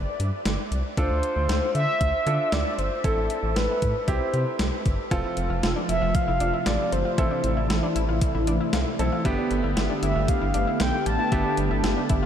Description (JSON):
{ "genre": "synth-pop", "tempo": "116 BPM", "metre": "4/4", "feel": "straight", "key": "G mixolydian", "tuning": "A4 = 439 Hz", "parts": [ { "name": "bright baby grand piano", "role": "accompaniment", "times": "0.0-12.3 s", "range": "B3 to B4", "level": "-32 LUFS", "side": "right 2 dB", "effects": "none" }, { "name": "rubbery square bass", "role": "bass", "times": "0.0-12.3 s", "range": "F1 to D3", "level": "-27 LUFS", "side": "equal", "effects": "none" }, { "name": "gated 80s digital drum machine", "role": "drums", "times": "0.2-12.2 s", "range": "hi-hat, kick drum, snare drum", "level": "-28 LUFS", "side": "equal", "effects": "gated reverb, gated reverb snare, overdrive" }, { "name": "mellow horn-like synth lead", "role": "melody", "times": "1.0-12.1 s", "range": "A4 to A5", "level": "-28 LUFS", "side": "equal", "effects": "chorus, ping-pong delay" }, { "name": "warm analog pad", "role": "sustained chords", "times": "5.1-12.3 s", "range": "C3 to G4", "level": "-28 LUFS", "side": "right 1 dB", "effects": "chorus" }, { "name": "analog pluck", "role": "arpeggios", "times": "5.1-12.3 s", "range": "D4 to A4", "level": "-34 LUFS", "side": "left 3 dB", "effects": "chorus, ping-pong delay" } ], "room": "moderate huge ambient reverb, RT60 9.4 s", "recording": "dreamy mix soaked in reverb", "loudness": "-22 LUFS", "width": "side -9 dB against mid", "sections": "0.0-5.1 A section; 5.1-12.3 B section", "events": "none", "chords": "0.0 G; 1.0 Dm7; 3.0 Amadd9; 4.1 C; 5.1 F; 7.2 Am; 9.3 Gadd9" }